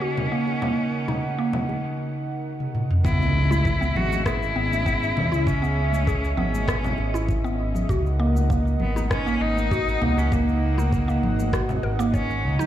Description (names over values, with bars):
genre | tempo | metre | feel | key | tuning
organic downtempo | 99 BPM | 4/4 | straight | C# dorian | A4 = 444 Hz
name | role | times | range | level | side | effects
rich cello | melody | 0.0-12.7 s | A#3 to F#4 | -28 LUFS | left 2 dB | ping-pong delay
warm analog pad | sustained chords | 0.0-12.7 s | C#3 to F#5 | -30 LUFS | right 2 dB | chorus, sidechain pumping
mallet-like synth pluck | arpeggios | 0.0-12.7 s | A#3 to C#5 | -28 LUFS | right 1 dB | chorus, cassette tape, tape echo
deep house drum kit | drums | 0.2-12.7 s | cabasa, congas, rim click, toms | -27 LUFS | equal | none
bongos and congas | percussion | 0.5-12.7 s | none | -33 LUFS | left 3 dB | none
smooth gliding synth bass | bass | 3.0-12.6 s | G#1 to E2 | -24 LUFS | equal | sidechain pumping
electronic kick drum | drums | 3.0-12.3 s | none | -25 LUFS | equal | none
impact | sound effects | 3.0-5.5 s | none | -31 LUFS | equal | none
room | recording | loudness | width
light reverb, digital ambience | played on a big sound system in a bare room, large studio reverb | -21 LUFS | side -11 dB against mid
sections
0.0-3.0 A section; 3.0-12.7 B section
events
filter sweep on synth pluck 0.0-3.0; drum fill 2.6-3.0; impact 3.0-5.5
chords
0.0 D#m7/C#; 3.0 C#m7; 7.9 D#m7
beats
0.02 | 0.62 1.23 1.83 2.44 | 3.05 3.65 4.26 4.87 | 5.47 6.08 6.68 7.29 | 7.89 8.50 9.11 9.71 | 10.32 10.93 11.53 12.14